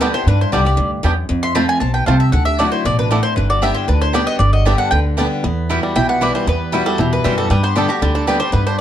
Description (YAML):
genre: bluegrass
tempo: 232 BPM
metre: 4/4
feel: straight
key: G major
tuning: A4 = 440 Hz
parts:
  - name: mandolin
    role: melody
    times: 0.0-8.8 s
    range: F#4 to C6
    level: -20 LUFS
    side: right 1 dB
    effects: none
  - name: lap resonator guitar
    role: second line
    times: 0.0-5.0 s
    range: D4 to F5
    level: -27 LUFS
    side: left 6 dB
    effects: none
  - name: picked steel-string acoustic guitar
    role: accompaniment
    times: 0.0-8.8 s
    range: E2 to G4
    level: -20 LUFS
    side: left 2 dB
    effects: none
  - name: bluegrass banjo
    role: arpeggios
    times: 0.0-8.8 s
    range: E3 to G4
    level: -22 LUFS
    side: right 2 dB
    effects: none
  - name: mandolin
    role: stabs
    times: 0.0-8.4 s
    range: G3 to A5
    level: -24 LUFS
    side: right 3 dB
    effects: none
  - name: upright bass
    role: bass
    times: 0.0-8.8 s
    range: G1 to G2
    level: -18 LUFS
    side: equal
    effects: none
room: light reverb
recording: dark, warm production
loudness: -14 LUFS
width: side -10 dB against mid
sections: 0.0-5.4 A section; 5.4-8.8 A section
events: none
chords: 0.0 G; 1.3 F; 2.3 Dadd9; 3.4 G; 5.4 Emadd9; 7.5 G